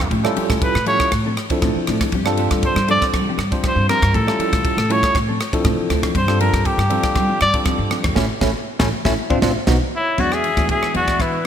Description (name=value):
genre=electric jazz fusion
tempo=119 BPM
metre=4/4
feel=straight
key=unclear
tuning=A4 = 440 Hz
part: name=clear trumpet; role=melody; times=0.0-11.5 s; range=E4 to D5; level=-20 LUFS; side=equal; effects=none
part: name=bell-like tine electric piano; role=accompaniment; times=0.0-11.4 s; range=E3 to C5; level=-23 LUFS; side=right 2 dB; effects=medium stereo tremolo, phaser
part: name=mellow electric guitar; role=stabs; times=0.0-11.5 s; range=F3 to A4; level=-29 LUFS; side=left 6 dB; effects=ensemble chorus
part: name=upright bass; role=bass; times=0.0-11.4 s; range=A1 to G3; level=-22 LUFS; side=equal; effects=none
part: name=crisp fusion drum kit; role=drums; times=0.0-11.5 s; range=crash cymbal, kick drum, ride cymbal, rim click, snare drum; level=-22 LUFS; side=equal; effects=gated reverb
part: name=breathy concert flute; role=second line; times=10.0-11.5 s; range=B4 to E5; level=-25 LUFS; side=left 5 dB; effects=none
room=moderate lush hall reverb, RT60 1.9 s, small room ambience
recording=bright 1980s-style digital production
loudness=-16 LUFS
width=side -9 dB against mid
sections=0.0-10.2 A section; 10.2-11.5 B section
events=trumpet solo 0.0-10.2; band accent 8.2-10.2; drum fill 9.2-10.2; tine electric piano fill 9.2-10.2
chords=0.1 A7b13; 1.1 Dm7/A; 2.1 G7sus4; 4.1 A7b13; 5.2 Dm7/A; 6.2 G7sus4; 8.2 A; 9.2 Dm7/A; 9.7 Badd9; 10.2 E9